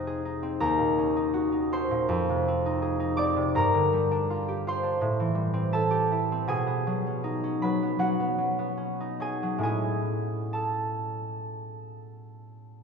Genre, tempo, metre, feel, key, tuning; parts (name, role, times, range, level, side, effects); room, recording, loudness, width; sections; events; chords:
classical, solo harp piece; 67-85 BPM; 4/4; rubato; A4 = 440 Hz
concert harp; solo; 0.0-12.8 s; D#2 to D6; -25 LUFS; equal
wet church reverb, RT60 3.4 s; minimal, uncompressed stereo recording; -25 LUFS; side -5 dB against mid
0.0-12.8 A section
0.0 Fm7; 0.6 D#m7; 2.1 Fm7; 3.5 Gm7; 5.0 Am7; 6.5 B69; 9.7 Amaj7